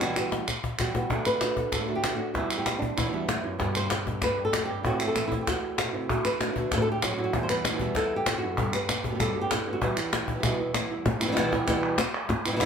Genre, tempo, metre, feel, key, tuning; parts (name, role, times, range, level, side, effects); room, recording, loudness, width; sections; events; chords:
flamenco; 193 BPM; 4/4; straight; E minor; A4 = 441 Hz
flamenco guitar; melody; 0.0-12.7 s; E2 to C5; -28 LUFS; equal
palmas hand claps; percussion; 0.0-12.7 s; -31 LUFS; right 2 dB
cajon; percussion; 0.2-12.7 s; -31 LUFS; left 3 dB
flamenco guitar; stabs; 1.1-11.1 s; E2 to G4; -33 LUFS; right 2 dB
moderate studio reverb, RT60 0.7 s; band playing live in one room; -25 LUFS; side -7 dB against mid
0.0-1.1 A section; 1.1-11.1 B section; 11.1-12.7 A section
drum fill 0.2-1.1
0.0 Emadd9; 1.1 D; 2.4 Em; 3.6 G; 4.8 Am; 6.1 D; 7.3 Em; 8.6 G; 9.8 Em